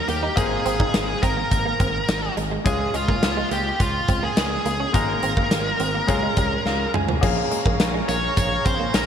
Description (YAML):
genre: 1980s-style pop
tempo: 105 BPM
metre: 4/4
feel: straight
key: unclear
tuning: A4 = 439 Hz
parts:
  - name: high-gain lead guitar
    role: melody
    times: 0.0-9.1 s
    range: F4 to Db5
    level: -25 LUFS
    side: equal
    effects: distortion, shimmer reverb, ping-pong delay
  - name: bright grand piano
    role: accompaniment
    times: 0.0-9.1 s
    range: G3 to Ab5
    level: -28 LUFS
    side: left 3 dB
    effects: shimmer reverb
  - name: direct-recorded clean electric guitar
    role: riff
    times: 0.1-9.0 s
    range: F3 to Eb4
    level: -30 LUFS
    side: right 4 dB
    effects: ensemble chorus, shimmer reverb
  - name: smooth gliding synth bass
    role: bass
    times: 0.1-9.1 s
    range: Ab1 to Eb2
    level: -28 LUFS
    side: equal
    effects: none
  - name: big rock drum kit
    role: drums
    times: 0.1-9.1 s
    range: crash cymbal, hi-hat, kick drum, snare drum, toms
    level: -23 LUFS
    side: equal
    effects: none
  - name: lush unison pad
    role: sustained chords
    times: 7.2-9.1 s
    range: Ab4 to Bb5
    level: -29 LUFS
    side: equal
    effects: chorus, shimmer reverb
room: moderate lush hall reverb, RT60 1.8 s, small room ambience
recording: bright 1980s-style digital production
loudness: -19 LUFS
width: side -8 dB against mid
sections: 0.0-7.2 A section; 7.2-9.1 B section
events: grand piano fill 6.4-7.2; drum fill 6.7-7.2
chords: 0.4 Abadd9; 2.7 Db; 4.9 Absus2; 6.1 Db; 7.2 Bbm7